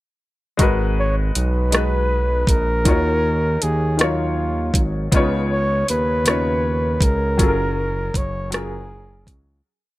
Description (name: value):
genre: slow six-eight R&B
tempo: 53 BPM (dotted quarters)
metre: 6/8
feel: straight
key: G# dorian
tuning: A4 = 441 Hz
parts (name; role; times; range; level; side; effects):
- clear concert grand piano; accompaniment; 0.6-9.7 s; C#3 to C#5; -24 LUFS; left 2 dB; none
- smooth synth bass; bass; 0.6-9.6 s; F#1 to D#2; -21 LUFS; equal; none
- smooth R&B drum kit; drums; 0.6-9.5 s; hi-hat, kick drum, rim click; -18 LUFS; equal; none
- breathy flugelhorn; melody; 1.0-9.3 s; E#4 to C#5; -23 LUFS; equal; none
room: little or no reverb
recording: none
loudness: -17 LUFS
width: side -17 dB against mid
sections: 0.6-9.7 verse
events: fade-out 7.4-9.7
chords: 0.6 G#m9; 2.9 D#m9; 5.1 C#9; 7.4 F#maj9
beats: | 0.59 1.73 | 2.86 3.99 | 5.12 6.25 | 7.39 8.52